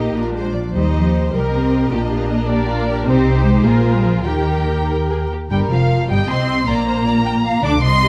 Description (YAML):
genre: quick classical-period movement for string orchestra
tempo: 102 BPM (dotted quarters)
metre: 6/8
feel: rubato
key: Eb major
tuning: A4 = 440 Hz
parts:
  - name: warm symphonic violin section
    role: melody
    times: 0.0-8.1 s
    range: F4 to D6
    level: -26 LUFS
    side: equal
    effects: none
  - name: warm symphonic violin section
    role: second line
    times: 0.0-8.1 s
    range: F4 to G5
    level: -28 LUFS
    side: equal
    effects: none
  - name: warm symphonic viola section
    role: accompaniment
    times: 0.0-8.1 s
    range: F3 to Bb4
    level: -25 LUFS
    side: equal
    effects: none
  - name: warm symphonic cello section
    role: bass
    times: 0.0-8.1 s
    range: F2 to C4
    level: -22 LUFS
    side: equal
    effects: none
  - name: warm symphonic double bass section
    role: bass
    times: 0.0-8.1 s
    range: F1 to Eb2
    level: -22 LUFS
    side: equal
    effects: none
room: light reverb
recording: close, detailed microphones, vinyl crackle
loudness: -17 LUFS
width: mono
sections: 0.0-5.5 A section; 5.5-8.1 A section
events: none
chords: 0.1 Bb; 0.7 Eb; 1.9 Bb7; 3.1 Cm; 3.7 Bb5; 4.3 Eb; 6.7 Bb